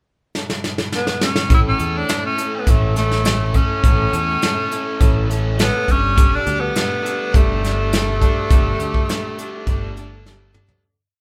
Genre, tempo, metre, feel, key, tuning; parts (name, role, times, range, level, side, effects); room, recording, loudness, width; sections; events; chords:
folk rock and heartland rock; 103 BPM; 4/4; straight; A mixolydian; A4 = 435 Hz
soft brush drum kit; drums; 0.3-10.8 s; hi-hat, kick drum, snare drum, toms; -20 LUFS; equal
breathy tenor saxophone; melody; 1.0-10.3 s; A3 to E4; -24 LUFS; equal
picked old ladder-braced acoustic guitar; accompaniment; 1.5-10.8 s; A2 to A4; -31 LUFS; equal
raw garage guitar; riff; 1.5-10.8 s; A2 to A4; -30 LUFS; equal; overdrive
fingered electric bass; bass; 1.5-10.6 s; G1 to E2; -24 LUFS; equal
moderate small room reverb, RT60 0.5 s; band playing live in one room; -18 LUFS; mono
0.0-1.5 pickup bar; 1.5-10.8 verse
drum fill 0.3-1.5, 10.2-10.8; fade-out 8.5-10.8
0.0 N.C.; 1.5 A; 5.9 Gsus2